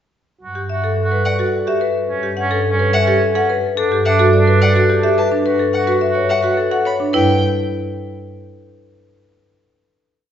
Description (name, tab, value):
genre	classical, minimalist pattern music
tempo	107 BPM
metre	3/4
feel	straight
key	G lydian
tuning	A4 = 440 Hz
part	clear oboe	second line	0.4-6.9 s	C#4 to F#4	-22 LUFS	right 3 dB	none
part	clear symphonic double bass section	bass	0.4-7.4 s	G2	-21 LUFS	right 3 dB	none
part	marimba with hard mallets	melody	0.6-7.4 s	G4 to F#5	-18 LUFS	left 5 dB	none
part	rich violin	arpeggios	1.2-7.4 s	F#5 to B5	-25 LUFS	left 1 dB	none
part	marimba with hard mallets	arpeggios	1.4-7.4 s	D4 to A4	-20 LUFS	right 3 dB	none
room	wet recital hall reverb, RT60 1.7 s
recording	recorded in a church or concert hall, nothing above 7.7 kHz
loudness	-14 LUFS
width	side -9 dB against mid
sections	0.4-7.1 A section; 7.1-8.8 final chord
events	none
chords	0.4 Gmaj9; 2.1 A9/G; 3.8 Em11/G; 5.5 D69/G (rootless); 7.1 N.C.